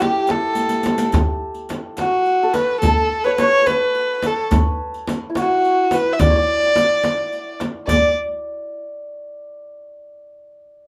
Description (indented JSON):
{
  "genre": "Persian modal ensemble",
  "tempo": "71 BPM (dotted quarters)",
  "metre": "6/8",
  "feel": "straight",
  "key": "unclear",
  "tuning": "A4 = 440 Hz",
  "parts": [
    { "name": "warm kamancheh", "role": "melody", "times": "0.0-8.1 s", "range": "F#4 to E5", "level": "-20 LUFS", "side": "equal", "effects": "none" },
    { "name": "santur", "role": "second line", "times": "0.0-8.8 s", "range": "E4 to D5", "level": "-27 LUFS", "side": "equal", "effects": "none" },
    { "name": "frame drum", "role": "percussion", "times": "0.0-8.2 s", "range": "none", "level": "-26 LUFS", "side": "equal", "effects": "none" },
    { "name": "riq", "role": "percussion", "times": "0.0-8.2 s", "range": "none", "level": "-30 LUFS", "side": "equal", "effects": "none" },
    { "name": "tombak", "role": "percussion", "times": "0.0-8.1 s", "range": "none", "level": "-25 LUFS", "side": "equal", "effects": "none" }
  ],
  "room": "moderate small room reverb, RT60 0.5 s",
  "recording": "band playing live in one room",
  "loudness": "-18 LUFS",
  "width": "mono",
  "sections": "0.0-7.9 A section; 7.9-9.6 B section",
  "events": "drum fill 0.6-1.1",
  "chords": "none",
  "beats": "0.30 | 1.14 1.98 | 2.83 3.67 | 4.51 5.36 | 6.20 7.04 | 7.89 8.73"
}